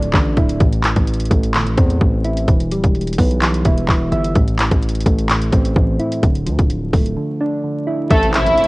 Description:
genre	hip hop, trap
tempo	128 BPM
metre	4/4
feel	half-time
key	A minor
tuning	A4 = 440 Hz
part	soft electric-piano-like synth keys	accompaniment	0.0-8.1 s	A2 to E5	-20 LUFS	equal	chorus
part	distorted 808-style bass	bass	0.0-8.6 s	D1 to E2	-20 LUFS	equal	distortion
part	trap drum kit	drums	0.0-8.7 s	handclaps, hi-hat, kick drum	-16 LUFS	equal	cassette tape
part	warm studio violin section	melody	8.1-8.7 s	A3 to E5	-14 LUFS	equal	cassette tape
part	string-like resonator pluck	second line	8.1-8.7 s	E5	-26 LUFS	left 2 dB	none
part	warm French horn section	sustained chords	8.1-8.7 s	A3 to E4	-24 LUFS	equal	none
part	impact	sound effects	8.3-8.7 s	none	-23 LUFS	equal	none
room	digital ambience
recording	home recording on cassette, vinyl crackle, nothing above 10.3 kHz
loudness	-14 LUFS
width	side -22 dB against mid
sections	0.0-8.1 A section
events	break 7.2-8.1; impact 8.1-8.7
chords	0.0 Dmadd9; 0.6 Am; 2.5 Em; 4.4 Am; 6.2 Dmadd9; 8.1 Am

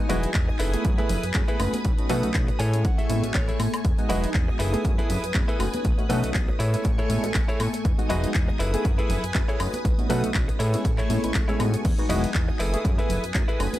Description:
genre	filtered disco house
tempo	120 BPM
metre	4/4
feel	swing 55% on 16ths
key	unclear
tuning	A4 = 440 Hz
part	barky reed electric piano	accompaniment	0.0-13.8 s	G#3 to D#5	-30 LUFS	equal	fast tremolo, phaser, sidechain pumping
part	string machine, full ensemble	sustained chords	0.0-13.8 s	A3 to D#6	-32 LUFS	left 1 dB	ensemble chorus, sidechain pumping
part	direct-recorded clean electric guitar	riff	0.1-13.8 s	D#4 to G#5	-30 LUFS	equal	sidechain pumping
part	fat analog bass	bass	0.1-13.7 s	E1 to B2	-27 LUFS	equal	transformer saturation, sidechain pumping
part	house drum kit	drums	0.1-13.8 s	crash cymbal, handclaps, hi-hat, woodblock	-33 LUFS	left 1 dB	sidechain pumping on hats, small room ambience, sidechain pumping on perc, sidechain pumping on cymbals
part	congas and egg shaker	percussion	0.1-13.8 s	none	-35 LUFS	right 1 dB	sidechain pumping on perc
part	electronic kick drum	drums	0.3-13.5 s	none	-25 LUFS	equal	small room ambience
room	little or no reverb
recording	dry, gritty hardware recording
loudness	-21 LUFS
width	side -14 dB against mid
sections	0.0-13.8 A section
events	clean electric guitar fill 2.3-3.8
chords	0.0 Emaj7; 0.6 F#m11; 1.8 B7; 2.6 Amaj7; 3.8 Emaj7; 4.6 F#m11; 5.8 B7; 6.6 Amaj7; 7.8 Emaj7; 8.6 F#m11; 9.8 B7; 10.6 Amaj7; 11.8 Emaj7; 12.6 F#m11

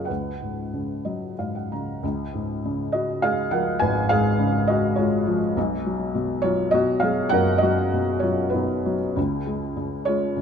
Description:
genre	classical, lyrical solo piano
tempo	90-105 BPM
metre	3/4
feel	rubato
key	unclear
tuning	A4 = 444 Hz
part	felt-muted upright piano	solo	0.0-10.4 s	F#1 to Bb5	-21 LUFS	equal	none
room	light reverb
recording	close, detailed microphones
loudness	-21 LUFS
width	side -7 dB against mid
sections	0.0-2.0 A section; 2.0-10.4 B section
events	felt piano fill 0.7-2.0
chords	0.1 Db7sus4; 2.0 Db7; 5.6 Bmaj7; 9.2 Db

